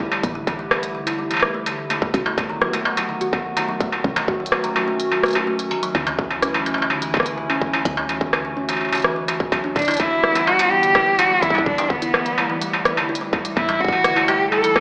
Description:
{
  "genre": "IDM",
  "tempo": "126 BPM",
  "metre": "4/4",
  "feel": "straight",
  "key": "E dorian",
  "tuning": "A4 = 440 Hz",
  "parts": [
    { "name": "warbly tape-like pad", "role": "sustained chords", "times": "0.0-14.8 s", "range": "D3 to G4", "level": "-30 LUFS", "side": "equal", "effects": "chorus, built-in reverb" },
    { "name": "kalimba", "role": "arpeggios", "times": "0.0-14.8 s", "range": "C#3 to F#4", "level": "-30 LUFS", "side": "equal", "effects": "tape echo" },
    { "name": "woody FM bass", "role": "bass", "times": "0.0-14.8 s", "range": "E1 to D2", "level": "-32 LUFS", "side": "equal", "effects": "none" },
    { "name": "electronic kick drum", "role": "drums", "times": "0.0-14.8 s", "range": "none", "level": "-27 LUFS", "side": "equal", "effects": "distortion, small room reverb" },
    { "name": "industrial drum kit", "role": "drums", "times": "0.1-14.8 s", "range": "hi-hat, rim click, struck metal", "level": "-24 LUFS", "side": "equal", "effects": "small room reverb" },
    { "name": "rich cello", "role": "melody", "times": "9.8-14.8 s", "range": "B3 to A4", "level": "-20 LUFS", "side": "equal", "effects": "vintage 12-bit sampler grit, dub echo" }
  ],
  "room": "moderate lush hall reverb, RT60 1.9 s, digital ambience",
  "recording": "played on a big sound system in a bare room, large studio reverb, AM radio sound",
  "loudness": "-20 LUFS",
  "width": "mono",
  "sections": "0.0-14.8 A section",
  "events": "none",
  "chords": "0.0 A7sus4; 2.1 B7; 5.9 Dmaj9; 9.8 Em; 13.6 A7(no3)"
}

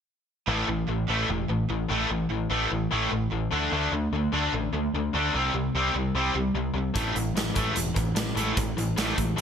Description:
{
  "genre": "hard rock",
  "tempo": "148 BPM",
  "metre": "4/4",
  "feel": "straight",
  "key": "A minor",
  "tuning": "A4 = 441 Hz",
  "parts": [
    { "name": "cranked stack guitar", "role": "riff", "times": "0.5-9.4 s", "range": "A2 to D4", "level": "-30 LUFS", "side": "right 9 dB", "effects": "overdrive, ensemble chorus" },
    { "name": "overdriven electric guitar", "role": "riff", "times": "0.5-9.4 s", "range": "A2 to D4", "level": "-28 LUFS", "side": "left 8 dB", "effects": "none" },
    { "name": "growling picked electric bass", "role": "bass", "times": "0.5-9.4 s", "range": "E1 to D2", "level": "-31 LUFS", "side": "right 1 dB", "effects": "overdrive" },
    { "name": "big rock drum kit", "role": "drums", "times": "7.0-9.4 s", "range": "hi-hat, kick drum, snare drum", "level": "-28 LUFS", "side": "right 1 dB", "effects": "gated reverb" }
  ],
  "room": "light reverb, small room ambience",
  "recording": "bright 1980s-style digital production",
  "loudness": "-24 LUFS",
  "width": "side -7 dB against mid",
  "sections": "0.5-9.4 A section",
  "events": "none",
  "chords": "0.5 A5; 3.5 D5; 5.3 C5; 7.0 A5"
}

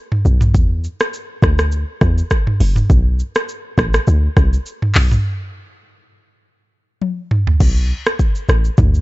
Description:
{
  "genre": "afrobeats",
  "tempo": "102 BPM",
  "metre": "4/4",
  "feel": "swing 55% on 16ths",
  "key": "unclear",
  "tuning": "A4 = 440 Hz",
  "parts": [
    { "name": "afro-pop drum kit", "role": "drums", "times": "0.1-9.0 s", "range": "crash cymbal, handclaps, hi-hat, kick drum, rim click, shaker, toms", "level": "-16 LUFS", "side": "equal", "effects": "overdrive" },
    { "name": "deep log drum bass", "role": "bass", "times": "0.3-9.0 s", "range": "F#1 to E2", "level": "-14 LUFS", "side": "equal", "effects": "none" }
  ],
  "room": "little or no reverb",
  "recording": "dark, warm production, nothing above 7.8 kHz",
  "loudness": "-14 LUFS",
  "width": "side -20 dB against mid",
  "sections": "0.0-7.6 A section; 7.6-9.0 B section",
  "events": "break 5.3-7.6; drum fill 7.0-7.6",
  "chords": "none"
}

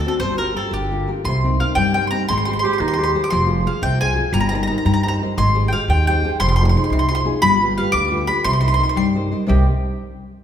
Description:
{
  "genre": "italian folk, Italian serenade",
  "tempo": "117 BPM (dotted quarters)",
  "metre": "6/8",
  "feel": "rubato",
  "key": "C minor",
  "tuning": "A4 = 440 Hz",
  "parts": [
    { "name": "mandolin", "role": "melody", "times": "0.0-9.0 s", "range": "G4 to D6", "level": "-20 LUFS", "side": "equal", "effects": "none" },
    { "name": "nylon-string guitar", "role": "accompaniment", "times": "0.0-9.7 s", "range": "C3 to G5", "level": "-22 LUFS", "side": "left 2 dB", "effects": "none" },
    { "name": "upright bass", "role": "bass", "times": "0.2-9.7 s", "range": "F1 to G2", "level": "-20 LUFS", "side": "right 1 dB", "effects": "none" },
    { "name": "warm clarinet", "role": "second line", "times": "2.6-3.2, 9.5-9.7 s", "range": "Eb4 to G4", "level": "-23 LUFS", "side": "right 4 dB", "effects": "none" }
  ],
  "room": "wet recital hall reverb, RT60 1.8 s",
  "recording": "recorded in a church or concert hall",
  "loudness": "-16 LUFS",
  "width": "side -9 dB against mid",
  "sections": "0.0-1.2 A section; 1.2-9.5 B section",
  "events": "none",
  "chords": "0.2 Gm7; 1.2 Cm7; 2.3 Abmaj7; 3.3 Fm; 4.3 Cm7/G; 5.4 Abmaj7; 6.4 Fm7; 7.4 G7; 8.4 Cm7"
}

